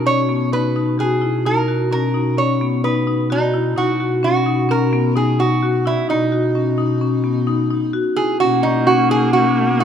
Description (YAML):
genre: contemporary instrumental, chamber music in an uneven meter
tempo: 130 BPM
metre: 5/4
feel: straight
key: B major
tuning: A4 = 440 Hz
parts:
  - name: lap resonator guitar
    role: melody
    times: 0.0-9.8 s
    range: D#4 to C#5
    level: -19 LUFS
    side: right 4 dB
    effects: none
  - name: mellow bass clarinet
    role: bass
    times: 0.0-9.8 s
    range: B2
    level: -21 LUFS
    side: equal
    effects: none
  - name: marimba with hard mallets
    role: arpeggios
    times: 0.1-9.8 s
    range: B3 to F#4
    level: -19 LUFS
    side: left 5 dB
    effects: none
  - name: rich viola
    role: second line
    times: 8.4-9.8 s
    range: A#3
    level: -22 LUFS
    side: right 3 dB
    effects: none
room: light reverb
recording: none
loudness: -15 LUFS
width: side -8 dB against mid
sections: 0.0-8.4 A section; 8.4-9.8 B section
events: none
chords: 0.0 B; 8.4 Bmaj9